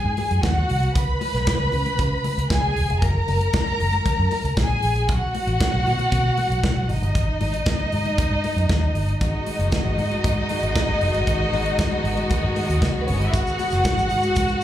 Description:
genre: disco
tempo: 116 BPM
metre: 4/4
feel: straight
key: unclear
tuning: A4 = 440 Hz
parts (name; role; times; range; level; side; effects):
- warm studio violin section; second line; 0.0-14.6 s; B3 to B5; -24 LUFS; equal; slapback echo
- vintage muted fingered electric bass; bass; 0.0-14.5 s; E1 to C#3; -23 LUFS; equal; none
- modern studio drum kit; drums; 0.2-14.6 s; hi-hat, kick drum, snare drum; -24 LUFS; equal; none
- congas; percussion; 0.2-14.5 s; none; -34 LUFS; left 4 dB; slapback echo
- clear studio string section; sustained chords; 9.2-14.6 s; D#3 to F#4; -27 LUFS; left 1 dB; none
- tube shaker; percussion; 13.3-14.6 s; none; -41 LUFS; right 3 dB; none
room: light reverb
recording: live gig heard through the venue's PA, club reverb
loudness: -19 LUFS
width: side -12 dB against mid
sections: 0.0-9.2 A section; 9.2-14.6 B section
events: none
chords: 0.0 G#5; 1.0 C#7(no3); 3.0 F#; 5.1 B5; 6.9 G#5; 9.2 G#m7

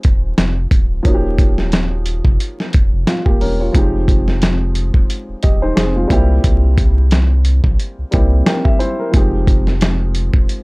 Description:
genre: hip hop, boom-bap hip-hop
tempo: 89 BPM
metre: 4/4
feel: swing 57% on 16ths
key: F minor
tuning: A4 = 441 Hz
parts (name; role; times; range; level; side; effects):
- dark upright piano; accompaniment; 0.0-10.6 s; F3 to G5; -21 LUFS; equal; high-pass filter, low-pass filter
- dusty soul sampler-style drum kit; drums; 0.0-10.6 s; hi-hat, kick drum, snare drum; -14 LUFS; equal; none
- warm sub bass; bass; 0.1-10.5 s; D1 to C2; -16 LUFS; equal; tube saturation
room: little or no reverb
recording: dry, gritty hardware recording, vinyl crackle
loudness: -12 LUFS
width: side -26 dB against mid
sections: 0.0-10.6 A section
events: none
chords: 0.0 Fm7; 1.0 Eb7; 3.7 Fm7; 6.1 C7; 9.1 Fm7

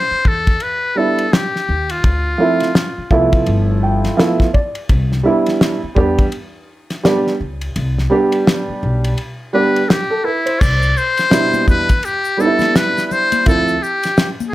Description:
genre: hip hop, jazz-hop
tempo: 84 BPM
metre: 4/4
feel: swing 60% on 16ths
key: C major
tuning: A4 = 438 Hz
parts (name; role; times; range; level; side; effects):
- trumpet with metal mute; melody; 0.0-3.3, 9.5-14.5 s; E4 to D5; -17 LUFS; left 2 dB; plate reverb
- upright bass; bass; 0.1-13.8 s; G1 to E2; -19 LUFS; left 1 dB; none
- cloth-damped thuddy drum kit; drums; 0.3-14.4 s; crash cymbal, hi-hat, kick drum, ride cymbal, snare drum; -16 LUFS; equal; none
- dark upright piano; accompaniment; 1.0-13.7 s; B2 to G5; -16 LUFS; right 2 dB; none
- tube shaker and congas; percussion; 10.6-14.5 s; none; -27 LUFS; left 8 dB; none
room: moderate studio reverb, RT60 0.6 s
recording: none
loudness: -13 LUFS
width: side -16 dB against mid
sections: 0.0-10.6 A section; 10.6-14.5 B section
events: upright piano fill 3.5-4.9; kick muted 7.8-10.6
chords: 0.0 Cmaj7 (rootless); 2.0 Dm7; 3.5 G13; 4.9 Cmaj7; 13.5 Dm7

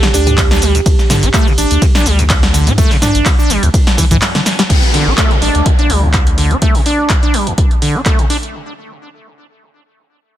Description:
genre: acid house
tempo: 125 BPM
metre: 4/4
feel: swing 54% on 16ths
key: unclear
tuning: A4 = 442 Hz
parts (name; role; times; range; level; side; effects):
- acid bass, saw; riff; 0.0-8.4 s; D2 to D4; -17 LUFS; equal; analog chorus, sidechain pumping, tape echo
- punchy analog drum machine; drums; 0.0-8.5 s; crash cymbal, handclaps, hi-hat, ride cymbal, shaker, snare drum, toms; -16 LUFS; equal; none
- saturated sub bass; bass; 0.1-6.5 s; A1 to D2; -14 LUFS; equal; tube saturation, sidechain pumping
- electronic kick drum; drums; 0.4-8.2 s; none; -13 LUFS; equal; none
- downlifter; sound effects; 4.7-8.5 s; none; -22 LUFS; equal; none
room: little or no reverb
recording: dense, heavily limited modern master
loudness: -9 LUFS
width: side -12 dB against mid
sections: 0.0-4.7 A section; 4.7-8.5 B section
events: drop 0.0-4.7; break 4.2-4.7; drum fill 4.2-4.7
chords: 0.0 D5

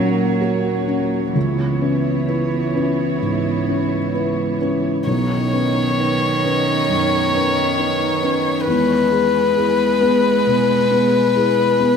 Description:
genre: neoclassical piano and strings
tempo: 66 BPM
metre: 4/4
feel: rubato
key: B major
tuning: A4 = 441 Hz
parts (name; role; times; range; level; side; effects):
- rich cello; second line; 0.0-12.0 s; D#3 to G#3; -23 LUFS; right 5 dB; none
- felt-muted upright piano; accompaniment; 0.0-12.0 s; B1 to B4; -20 LUFS; left 1 dB; analog chorus
- dark chamber string section; sustained chords; 0.0-12.0 s; A#3 to C#5; -26 LUFS; right 2 dB; none
- warm violin; melody; 5.1-12.0 s; B4 to C#5; -17 LUFS; left 5 dB; ping-pong delay
room: wet plate reverb, RT60 3.6 s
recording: dreamy mix soaked in reverb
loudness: -16 LUFS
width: side -6 dB against mid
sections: 0.0-5.1 A section; 5.1-12.0 A section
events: none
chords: 0.0 D#m7; 1.4 C#m7; 5.1 Badd9; 8.7 E

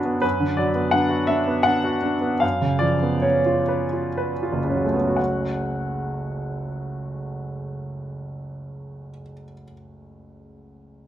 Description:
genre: classical, romantic character piece for solo piano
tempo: 57-87 BPM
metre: 3/4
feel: rubato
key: F# minor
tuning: A4 = 439 Hz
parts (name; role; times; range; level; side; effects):
- clear baby grand piano; solo; 0.0-11.1 s; F#1 to F#5; -21 LUFS; equal; none
room: moderate recital hall reverb, RT60 1.5 s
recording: close, detailed microphones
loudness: -20 LUFS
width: side -11 dB against mid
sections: 0.0-5.2 A section; 5.2-10.8 B section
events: slowing down 0.0-5.2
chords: 0.0 Bm/F#; 2.4 C#7/F#; 5.2 F#m

